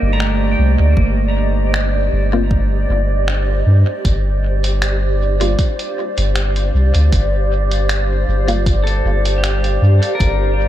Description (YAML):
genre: ambient dub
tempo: 78 BPM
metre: 4/4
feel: swing 53% on 16ths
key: G minor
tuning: A4 = 440 Hz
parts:
  - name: granular cloud pad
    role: sustained chords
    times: 0.0-10.7 s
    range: G4 to F5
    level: -21 LUFS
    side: equal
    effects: built-in reverb
  - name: pedal steel guitar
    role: arpeggios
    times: 0.0-3.6, 8.8-10.7 s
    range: A3 to Bb5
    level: -24 LUFS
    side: right 2 dB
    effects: tape echo
  - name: soft dub sub bass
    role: bass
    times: 0.0-10.7 s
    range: G1 to G2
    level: -15 LUFS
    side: equal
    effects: none
  - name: lo-fi sampler-style drum kit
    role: drums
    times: 0.2-10.4 s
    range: finger snaps, hi-hat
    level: -26 LUFS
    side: equal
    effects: dub echo
  - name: electronic kick drum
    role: drums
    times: 1.0-10.4 s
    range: none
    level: -17 LUFS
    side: equal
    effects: none
  - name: filtered dub chord stab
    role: stabs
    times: 2.3-8.7 s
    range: G3 to F4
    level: -25 LUFS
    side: left 3 dB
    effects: phaser, dub echo
room: little or no reverb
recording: none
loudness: -13 LUFS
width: side -12 dB against mid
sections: 0.0-10.7 A section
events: filter sweep on synth stab 0.0-10.7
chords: 0.0 Bbsus2/G; 4.0 Gm7